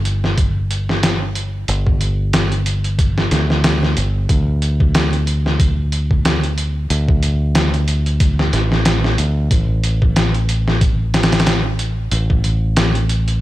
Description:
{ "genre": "trip hop", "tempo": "92 BPM", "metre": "4/4", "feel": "swing 57% on 16ths", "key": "unclear", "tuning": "A4 = 439 Hz", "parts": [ { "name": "fingered electric bass", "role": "bass", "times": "0.0-13.4 s", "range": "G1 to D2", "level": "-17 LUFS", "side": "equal", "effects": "none" }, { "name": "trip hop sampler-style drum kit", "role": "drums", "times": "0.1-13.4 s", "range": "hi-hat, kick drum, snare drum", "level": "-17 LUFS", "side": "equal", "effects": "vintage 12-bit sampler grit" } ], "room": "little or no reverb", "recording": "none", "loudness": "-14 LUFS", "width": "side -16 dB against mid", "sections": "0.0-13.4 A section", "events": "none", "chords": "none", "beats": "0.38 1.03 | 1.69 2.34 2.99 3.64 | 4.29 4.95 5.60 6.25 | 6.90 7.55 8.21 8.86 | 9.51 10.16 10.82 11.47 | 12.12 12.77" }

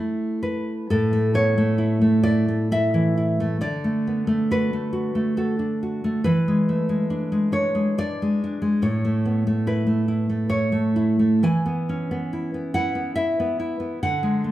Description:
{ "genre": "romantic piece for solo classical guitar", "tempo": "69 BPM", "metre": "3/4", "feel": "uneven beats, rubato", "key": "A major", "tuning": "A4 = 440 Hz", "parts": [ { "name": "nylon-string guitar", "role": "solo", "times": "0.0-14.5 s", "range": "A2 to G#5", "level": "-20 LUFS", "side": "equal", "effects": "none" } ], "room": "wet large studio reverb, RT60 0.8 s", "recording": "band playing live in one room", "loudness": "-20 LUFS", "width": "side -14 dB against mid", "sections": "0.9-14.5 A section", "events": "none", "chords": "0.0 A5; 0.9 A; 3.6 D; 6.2 E7; 8.8 A; 11.5 E", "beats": "| 0.91 1.81 2.71 | 3.62 4.50 5.38 | 6.25 7.12 7.98 | 8.84 9.68 10.53 | 11.46 12.34 13.19 | 14.03" }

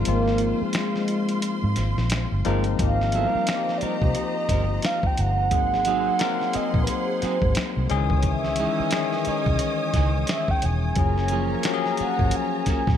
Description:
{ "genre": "R&B, neo-soul", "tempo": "88 BPM", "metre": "4/4", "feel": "swing 60% on 16ths", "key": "Ab major", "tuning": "A4 = 435 Hz", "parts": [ { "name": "barky tine electric piano", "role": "accompaniment", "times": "0.0-13.0 s", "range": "Eb3 to Bb4", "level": "-28 LUFS", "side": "left 12 dB", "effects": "auto-pan" }, { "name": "warm symphonic string section", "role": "sustained chords", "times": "0.0-13.0 s", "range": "F4 to Eb6", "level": "-34 LUFS", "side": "right 2 dB", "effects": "none" }, { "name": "vintage muted fingered electric bass", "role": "bass", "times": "0.0-13.0 s", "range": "Fb1 to Ab2", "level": "-25 LUFS", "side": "right 1 dB", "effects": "none" }, { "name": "mellow horn-like synth lead", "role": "melody", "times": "0.1-13.0 s", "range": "Ab3 to Ab5", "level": "-26 LUFS", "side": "right 2 dB", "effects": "chorus" }, { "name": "dusty soul sampler-style drum kit", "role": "drums", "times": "0.1-13.0 s", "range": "finger snaps, hi-hat, kick drum, snare drum", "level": "-26 LUFS", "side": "right 1 dB", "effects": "none" }, { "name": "clean electric guitar", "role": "second line", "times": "2.1-12.8 s", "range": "Fb3 to Bb4", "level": "-32 LUFS", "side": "right 7 dB", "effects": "none" }, { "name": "clear horn section", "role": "stabs", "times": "8.2-13.0 s", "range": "Fb3 to Db4", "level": "-34 LUFS", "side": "right 7 dB", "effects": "none" } ], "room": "light reverb", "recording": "none", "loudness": "-21 LUFS", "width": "side -9 dB against mid", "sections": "0.0-2.8 A section; 2.8-13.0 B section", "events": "break 0.1-2.8", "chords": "0.0 Abmaj13; 5.5 Ab7; 7.9 Dbmadd9; 11.0 Gbmaj9", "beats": "| 0.06 0.74 1.42 2.10 | 2.79 3.47 4.15 4.83 | 5.51 6.20 6.88 7.56 | 8.24 8.92 9.60 10.29 | 10.97 11.65 12.33" }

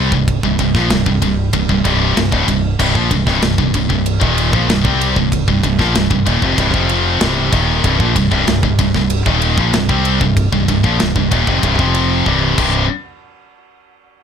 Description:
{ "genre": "heavy metal", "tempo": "95 BPM", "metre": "4/4", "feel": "straight", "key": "C minor", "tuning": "A4 = 439 Hz", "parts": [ { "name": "heavy high-gain guitar", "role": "riff", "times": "0.0-12.8 s", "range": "C2 to C4", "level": "-17 LUFS", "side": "left 12 dB", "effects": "distortion" }, { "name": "scooped high-gain guitar", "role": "riff", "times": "0.0-12.8 s", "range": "C2 to C4", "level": "-18 LUFS", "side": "right 9 dB", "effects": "distortion" }, { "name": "growling fingered electric bass", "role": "bass", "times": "0.0-12.9 s", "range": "C1 to C2", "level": "-19 LUFS", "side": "equal", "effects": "overdrive" }, { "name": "tight metal drum kit", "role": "drums", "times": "0.1-12.7 s", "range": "crash cymbal, kick drum, ride cymbal, snare drum", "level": "-19 LUFS", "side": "equal", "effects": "none" } ], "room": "light reverb", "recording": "none", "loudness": "-12 LUFS", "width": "side -7 dB against mid", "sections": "0.0-12.9 A section; 12.9-14.2 B section", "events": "drum fill 12.3-12.9", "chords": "0.0 Cm; 12.6 C5; 12.9 N.C.", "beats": "| 0.28 0.91 1.54 2.17 | 2.80 3.43 4.06 4.69 | 5.33 5.96 6.59 7.22 | 7.85 8.48 9.11 9.74 | 10.37 11.00 11.63 12.27" }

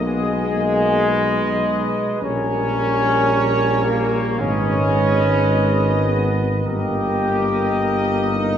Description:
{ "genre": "classical, hymn-like piece for brass band", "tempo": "49-57 BPM", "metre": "4/4", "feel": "rubato", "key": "G# minor", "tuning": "A4 = 440 Hz", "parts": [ { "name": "clear trumpet section", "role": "melody", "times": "0.0-8.6 s", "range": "Db5 to D#5", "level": "-27 LUFS", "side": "left 2 dB", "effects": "none" }, { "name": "mellow flugelhorn", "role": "second line", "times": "0.0-8.6 s", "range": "G#4 to B4", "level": "-26 LUFS", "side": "right 3 dB", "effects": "none" }, { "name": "warm trombone", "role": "accompaniment", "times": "0.0-8.6 s", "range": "G3 to B3", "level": "-28 LUFS", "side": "right 3 dB", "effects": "none" }, { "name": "warm trombone section", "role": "accompaniment", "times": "0.0-8.6 s", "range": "G#3 to G4", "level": "-20 LUFS", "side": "left 1 dB", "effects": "none" }, { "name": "dark tuba", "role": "bass", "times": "0.0-8.6 s", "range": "G1 to B1", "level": "-22 LUFS", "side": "equal", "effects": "none" } ], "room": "wet concert hall reverb, RT60 2.0 s", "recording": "heard from further back in the room", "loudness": "-16 LUFS", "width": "side -9 dB against mid", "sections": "0.0-8.6 A section", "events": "none", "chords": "0.0 G#m/B; 2.2 Gdim/Bb; 4.4 G#m; 6.6 D#/G", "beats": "0.01 1.06 | 2.21 3.30 4.38 5.46 | 6.65 7.76" }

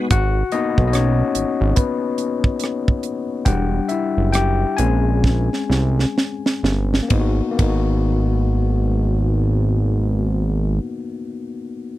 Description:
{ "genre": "R&B, neo-soul", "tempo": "62-73 BPM", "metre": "4/4", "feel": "swing 61% on 16ths", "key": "unclear", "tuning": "A4 = 439 Hz", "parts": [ { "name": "overdriven tine electric piano", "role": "accompaniment", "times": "0.0-12.0 s", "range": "G3 to G#5", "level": "-22 LUFS", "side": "left 5 dB", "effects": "none" }, { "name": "fat analog bass", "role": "bass", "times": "0.1-10.8 s", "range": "E1 to B#1", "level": "-18 LUFS", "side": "right 1 dB", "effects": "none" }, { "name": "tight funk drum kit", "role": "drums", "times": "0.1-7.9 s", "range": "hi-hat, kick drum, ride cymbal, rim click, snare drum", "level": "-18 LUFS", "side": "right 1 dB", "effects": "none" } ], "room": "little or no reverb", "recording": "dry, close 1970s-style studio recording", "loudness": "-17 LUFS", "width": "side -15 dB against mid", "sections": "0.1-7.1 A section; 7.1-11.0 B section", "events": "slowing down 0.1-7.1; tine electric piano solo 0.1-7.1; drum fill 5.2-7.1", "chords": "0.1 G#m9; 3.5 Em9; 4.8 A#m9; 7.1 G#m9", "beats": "| 0.11 0.93 1.76 2.61 | 3.46 4.34 5.23 6.16 | 7.11 8.07 9.04 10.01" }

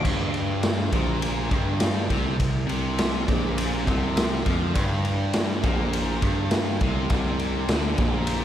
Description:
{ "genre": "blues rock power trio and southern rock", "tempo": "102 BPM", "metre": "4/4", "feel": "straight", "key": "unclear", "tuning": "A4 = 440 Hz", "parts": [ { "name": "thick fuzz guitar", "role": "riff", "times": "0.0-8.4 s", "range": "G2 to F3", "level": "-27 LUFS", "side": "equal", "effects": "distortion, slapback echo" }, { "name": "raw garage drum kit", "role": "drums", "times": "0.0-8.4 s", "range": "crash cymbal, kick drum, ride cymbal, snare drum", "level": "-25 LUFS", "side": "equal", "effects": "none" }, { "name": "dark bass clarinet", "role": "bass", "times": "0.1-8.4 s", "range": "Bb1 to G2", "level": "-28 LUFS", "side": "equal", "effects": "none" } ], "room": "light reverb, studio reverb", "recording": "none", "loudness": "-22 LUFS", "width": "side -10 dB against mid", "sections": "0.0-8.4 A section", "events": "none", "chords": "0.0 Gm; 2.4 Bbsus2; 4.7 Gm", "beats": "| 0.04 0.63 1.21 1.80 | 2.39 2.98 3.57 4.16 | 4.74 5.33 5.92 6.51 | 7.10 7.68 8.27" }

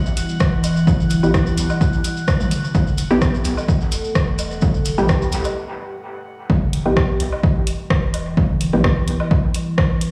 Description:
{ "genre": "dub techno", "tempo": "128 BPM", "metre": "4/4", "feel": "swing 54% on 16ths", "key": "E minor", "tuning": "A4 = 440 Hz", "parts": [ { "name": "deep dark ambient pad", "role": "sustained chords", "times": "0.0-10.1 s", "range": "G3 to A4", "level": "-27 LUFS", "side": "equal", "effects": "chorus, built-in reverb, sidechain pumping" }, { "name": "drifting glass-harmonics texture", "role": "texture", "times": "0.0-5.6 s", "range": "F#5", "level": "-37 LUFS", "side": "equal", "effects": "chorus, built-in reverb, sidechain pumping" }, { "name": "maracas", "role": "percussion", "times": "0.1-5.5 s", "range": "none", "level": "-34 LUFS", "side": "equal", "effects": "none" }, { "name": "soft dub sub bass", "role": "bass", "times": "0.2-9.2 s", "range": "E1 to B1", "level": "-27 LUFS", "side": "equal", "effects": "sidechain pumping" }, { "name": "punchy analog drum machine", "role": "drums", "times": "0.2-10.1 s", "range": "hi-hat, rim click", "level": "-29 LUFS", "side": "equal", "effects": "overdrive, dub echo" }, { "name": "electronic kick drum", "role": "drums", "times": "0.4-9.9 s", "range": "none", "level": "-20 LUFS", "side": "equal", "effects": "overdrive" }, { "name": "electronic woodblock and toms", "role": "percussion", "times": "0.6-9.3 s", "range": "none", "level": "-28 LUFS", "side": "equal", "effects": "sidechain pumping on toms, sidechain pumping on perc, dub echo" }, { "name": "filtered dub chord stab", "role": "stabs", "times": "1.2-9.0 s", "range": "B3 to G4", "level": "-26 LUFS", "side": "equal", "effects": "phaser, sidechain pumping, dub echo" } ], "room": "light reverb, digital ambience", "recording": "played on a big sound system in a bare room, stone room reverb, studio reverb", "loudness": "-18 LUFS", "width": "mono", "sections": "0.0-6.5 A section; 6.5-10.1 A section", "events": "break 5.6-6.5", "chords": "0.0 Em", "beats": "0.40 | 0.87 1.34 1.81 2.28 | 2.75 3.22 3.69 4.15 | 4.62 5.09 5.56 6.03 | 6.50 6.97 7.43 7.90 | 8.37 8.84 9.31 9.78" }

